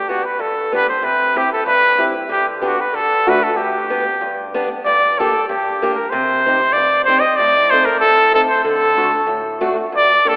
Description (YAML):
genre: alpine folk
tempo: 94 BPM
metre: 2/4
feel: straight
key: G major, G harmonic minor from 4.8 s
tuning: A4 = 439 Hz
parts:
  - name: clear trumpet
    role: melody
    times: 0.0-10.4 s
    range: F#4 to Eb5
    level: -14 LUFS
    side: equal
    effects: none
  - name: picked old ladder-braced acoustic guitar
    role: accompaniment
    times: 0.0-10.4 s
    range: G2 to A4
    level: -20 LUFS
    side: equal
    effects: none
room: wet concert hall reverb, RT60 2.5 s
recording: recorded in a church or concert hall, telephone sound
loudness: -13 LUFS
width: side -26 dB against mid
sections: 0.0-4.8 A section; 4.8-10.4 B section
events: none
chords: 0.0 G; 1.0 C; 2.3 G/D; 2.9 D; 3.6 G; 4.8 Gm; 6.1 Cm; 7.4 Adim; 8.6 D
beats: 0.39 | 1.03 1.66 | 2.29 2.92 | 3.55 4.20 | 4.84 5.48 | 6.12 6.75 | 7.37 8.00 | 8.64 9.28 | 9.92